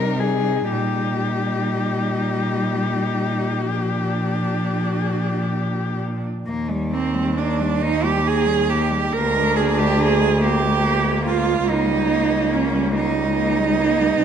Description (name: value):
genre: classical, lyrical piece for cello ensemble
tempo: 40-48 BPM (dotted quarters)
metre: 12/8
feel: rubato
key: Eb major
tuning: A4 = 441 Hz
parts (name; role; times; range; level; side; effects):
- warm cello; melody; 0.0-14.2 s; G3 to Bb4; -26 LUFS; left 6 dB; none
- clear cello; second line; 0.0-14.2 s; C4 to Bb4; -22 LUFS; right 6 dB; none
- rich cello; accompaniment; 0.0-14.2 s; F3 to Bb3; -26 LUFS; left 3 dB; none
- rich cello; bass; 0.0-14.2 s; C2 to C3; -23 LUFS; equal; none
room: wet recital hall reverb, RT60 1.7 s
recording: none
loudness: -18 LUFS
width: side -8 dB against mid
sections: 0.0-6.5 A section; 6.5-14.2 B section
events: none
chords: 0.0 Cm7; 0.7 Eb/Bb; 3.6 Bb; 6.5 Eb; 9.1 Bb7/D; 11.7 Eb7/Db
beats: | 0.71 2.18 3.63 5.06 | 6.48 7.80 9.12 10.40 | 11.65 12.92 14.20